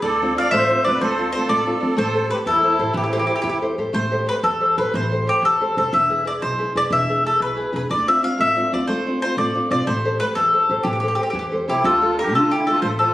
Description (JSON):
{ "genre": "italian folk, Italian serenade", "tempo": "122 BPM (dotted quarters)", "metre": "6/8", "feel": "rubato", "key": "A minor", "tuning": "A4 = 441 Hz", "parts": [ { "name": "mandolin", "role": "melody", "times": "0.0-13.1 s", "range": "G4 to F5", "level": "-19 LUFS", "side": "left 1 dB", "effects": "none" }, { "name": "musette accordion", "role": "second line", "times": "0.0-3.6, 11.7-13.1 s", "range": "E4 to D5", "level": "-24 LUFS", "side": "right 2 dB", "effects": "none" }, { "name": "nylon-string guitar", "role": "accompaniment", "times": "0.0-13.1 s", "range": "B2 to C5", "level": "-24 LUFS", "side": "equal", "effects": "none" }, { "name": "upright bass", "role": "bass", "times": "0.0-13.1 s", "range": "E1 to D3", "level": "-27 LUFS", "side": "equal", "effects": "none" } ], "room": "moderate studio reverb, RT60 0.6 s", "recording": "recorded on a phone in the room, studio reverb", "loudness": "-17 LUFS", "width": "side -15 dB against mid", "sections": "0.0-3.9 A section; 3.9-11.8 A section; 11.8-13.1 B section", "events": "none", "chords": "0.0 Dm7; 2.0 Am7; 5.9 E; 7.9 Dm7; 9.9 Am7; 11.8 Dm", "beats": "| 0.03 0.52 | 1.01 1.50 | 1.98 2.46 | 2.95 3.45 | 3.95 4.45 | 4.94 5.43 | 5.92 6.41 | 6.90 7.39 | 7.89 8.39 | 8.88 9.37 | 9.86 10.35 | 10.84 11.33 | 11.83 12.33 | 12.82" }